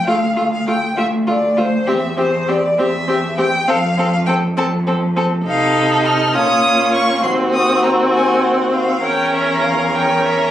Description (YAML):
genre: quick classical-period movement for string quartet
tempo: 67 BPM (dotted quarters)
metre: 6/8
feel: straight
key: F major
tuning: A4 = 440 Hz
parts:
  - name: rich violin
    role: melody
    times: 0.0-10.5 s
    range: C5 to F6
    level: -19 LUFS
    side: left 1 dB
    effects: none
  - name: rich violin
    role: second line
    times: 0.1-10.5 s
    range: F4 to Bb4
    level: -19 LUFS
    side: left 1 dB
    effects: none
  - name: warm viola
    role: accompaniment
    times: 0.1-10.5 s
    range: A3 to Eb4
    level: -19 LUFS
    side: right 1 dB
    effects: none
  - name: rich cello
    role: bass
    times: 0.1-10.5 s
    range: D2 to C3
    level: -21 LUFS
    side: right 1 dB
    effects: none
room: moderate studio reverb, RT60 0.8 s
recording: recorded on a phone in the room, club reverb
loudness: -14 LUFS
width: side -11 dB against mid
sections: 0.0-10.5 A section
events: none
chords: 0.1 Dm; 1.9 C/E; 3.7 F; 5.5 F7/C; 6.3 Bbm; 7.2 Cdim/Eb; 9.0 Edim7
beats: | 0.07 0.97 | 1.88 2.79 | 3.68 4.57 | 5.46 6.35 | 7.24 8.12 | 9.03 9.95